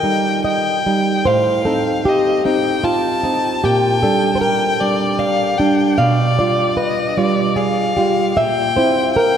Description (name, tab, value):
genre	romantic duo for violin and classical guitar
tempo	76 BPM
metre	3/4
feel	rubato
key	G minor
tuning	A4 = 440 Hz
part	rich violin	melody	0.0-9.4 s	D5 to A5	-19 LUFS	left 3 dB	none
part	nylon-string guitar	accompaniment	0.0-9.4 s	A2 to F5	-16 LUFS	right 1 dB	none
room	wet cathedral reverb, RT60 6.3 s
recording	in a vast, echoing space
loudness	-14 LUFS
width	side -8 dB against mid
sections	0.0-9.4 A section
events	none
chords	0.0 Eb; 1.3 Am7b5; 3.6 Gm/Bb; 6.0 G7/B; 8.4 C7/Bb